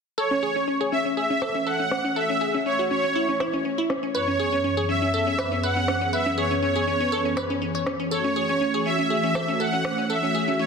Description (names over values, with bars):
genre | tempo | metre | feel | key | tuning
progressive house | 121 BPM | 4/4 | straight | F# minor | A4 = 442 Hz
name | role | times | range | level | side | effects
soft supersaw | melody | 0.2-10.7 s | C#5 to F#5 | -25 LUFS | right 1 dB | ping-pong delay
warm analog pad | sustained chords | 0.2-10.7 s | F#2 to C#5 | -29 LUFS | equal | chorus
glassy wavetable pluck | arpeggios | 0.2-10.7 s | C#4 to C#5 | -26 LUFS | left 1 dB | chorus, ping-pong delay
electronic rim click | drums | 1.4-10.0 s | none | -31 LUFS | right 1 dB | overdrive, low-pass filter on snare, low-pass filter on room
room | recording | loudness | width
moderate lush hall reverb, RT60 1.8 s | dense, heavily limited modern master | -22 LUFS | side -5 dB against mid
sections
0.2-10.7 A section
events
filter sweep on synth arpeggio sound 0.2-10.7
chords
0.2 F#m7; 4.1 C#m7/F#; 8.1 F#m7